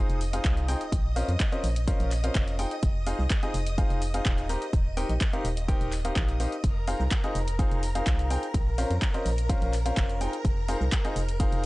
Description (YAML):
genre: piano house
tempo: 126 BPM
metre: 4/4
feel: straight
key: F minor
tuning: A4 = 441 Hz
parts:
  - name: string machine, violins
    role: sustained chords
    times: 0.0-11.7 s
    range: Bb4 to Eb6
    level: -38 LUFS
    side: equal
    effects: ensemble chorus, vintage 12-bit sampler grit, sidechain pumping
  - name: clear baby grand piano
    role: riff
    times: 0.0-11.6 s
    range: Db4 to Bb5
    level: -32 LUFS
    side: left 1 dB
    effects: sidechain pumping, tape echo
  - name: organ-like FM bass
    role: bass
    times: 0.0-11.7 s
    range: Eb1 to F2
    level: -28 LUFS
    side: equal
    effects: sidechain pumping
  - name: sub drop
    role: sound effects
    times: 0.0-0.9 s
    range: none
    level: barely audible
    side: none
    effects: none
  - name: house drum kit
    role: drums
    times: 0.1-11.7 s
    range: handclaps, hi-hat, shaker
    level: -36 LUFS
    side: equal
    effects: studio ambience
  - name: electronic kick drum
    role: drums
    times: 0.4-11.5 s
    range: none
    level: -26 LUFS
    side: equal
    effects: studio ambience
room: little or no reverb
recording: dry, gritty hardware recording, transformer saturation, nothing above 10.3 kHz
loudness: -24 LUFS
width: side -20 dB against mid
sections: 0.0-11.7 A section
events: impact 0.0-0.9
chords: 0.0 Fm7; 0.9 Bbmadd9; 2.6 Fm7; 4.5 Cm7/Eb; 6.6 Fm7; 8.5 Bbmadd9; 10.2 Fm7